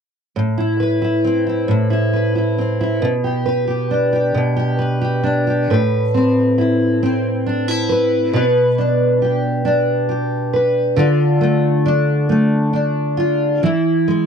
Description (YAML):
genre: pop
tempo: 45 BPM (dotted quarters)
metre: 6/8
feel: straight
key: A minor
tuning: A4 = 440 Hz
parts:
  - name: fingerpicked steel-string acoustic guitar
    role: accompaniment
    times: 0.4-14.3 s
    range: A2 to B4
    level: -15 LUFS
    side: equal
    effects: double-tracked left and right
room: light reverb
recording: dry, close 1970s-style studio recording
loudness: -15 LUFS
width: side -7 dB against mid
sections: 0.4-5.7 A section; 5.7-14.3 B section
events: none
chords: 0.4 Amadd9; 3.0 G/B; 5.7 Amadd9; 8.3 G/B; 11.0 Dm; 13.6 E